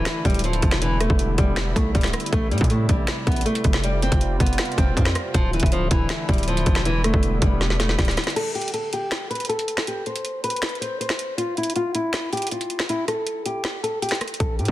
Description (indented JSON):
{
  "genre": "hip hop, trap",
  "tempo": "159 BPM",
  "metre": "4/4",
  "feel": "half-time",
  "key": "unclear",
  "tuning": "A4 = 440 Hz",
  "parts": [
    { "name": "nylon-string guitar", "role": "melody", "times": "0.0-14.7 s", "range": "E3 to C5", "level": "-25 LUFS", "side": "left 1 dB", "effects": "low-pass filter" },
    { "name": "sweeping resonant pad", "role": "sustained chords", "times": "0.0-8.3 s", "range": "C3 to F4", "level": "-30 LUFS", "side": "left 1 dB", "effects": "chorus" },
    { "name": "distorted 808-style bass", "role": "bass", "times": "0.0-8.2, 14.4-14.7 s", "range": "D1 to A2", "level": "-24 LUFS", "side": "equal", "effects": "distortion" },
    { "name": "trap drum kit", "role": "drums", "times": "0.1-14.7 s", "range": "crash cymbal, finger snaps, hi-hat, kick drum, rim click, snare drum", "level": "-23 LUFS", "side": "equal", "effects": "vintage 12-bit sampler grit" }
  ],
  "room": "little or no reverb",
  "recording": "dense, heavily limited modern master",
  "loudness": "-20 LUFS",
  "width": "side -15 dB against mid",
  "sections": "0.0-8.4 A section; 8.4-14.7 B section",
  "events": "drum fill 7.6-8.4; break 8.4-14.4",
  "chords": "0.0 Dmadd9; 0.8 Em7; 2.3 Am7; 3.8 Fsus2; 5.3 Dmadd9; 6.9 Em7; 8.4 N.C."
}